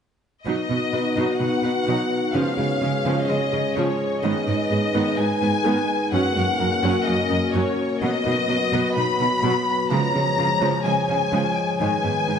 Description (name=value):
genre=cinematic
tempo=127 BPM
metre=4/4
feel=straight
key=unclear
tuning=A4 = 440 Hz
part: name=clear symphonic violin section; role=melody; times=0.5-12.4 s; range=C#5 to B5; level=-24 LUFS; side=left 4 dB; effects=none
part: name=rich studio viola section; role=accompaniment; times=0.5-12.4 s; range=D#3 to B4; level=-27 LUFS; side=right 1 dB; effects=none
part: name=dark analog pad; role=sustained chords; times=0.5-12.4 s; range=D#3 to C#5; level=-24 LUFS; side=left 1 dB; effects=chorus
part: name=bright symphonic cello section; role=bass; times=0.5-12.3 s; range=F#2 to C#3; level=-26 LUFS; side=right 3 dB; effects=none
room=moderate scoring stage reverb, RT60 2.1 s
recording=nothing above 11.0 kHz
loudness=-19 LUFS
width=side -7 dB against mid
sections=0.5-12.4 A section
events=none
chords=0.5 B; 2.3 C#; 4.2 G#m; 6.1 F#; 8.0 B; 9.9 C#; 11.8 G#m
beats=| 0.46 0.93 1.40 1.87 | 2.34 2.82 3.29 3.76 | 4.23 4.71 5.18 5.65 | 6.12 6.60 7.07 7.54 | 8.01 8.49 8.96 9.43 | 9.90 10.38 10.85 11.32 | 11.79 12.27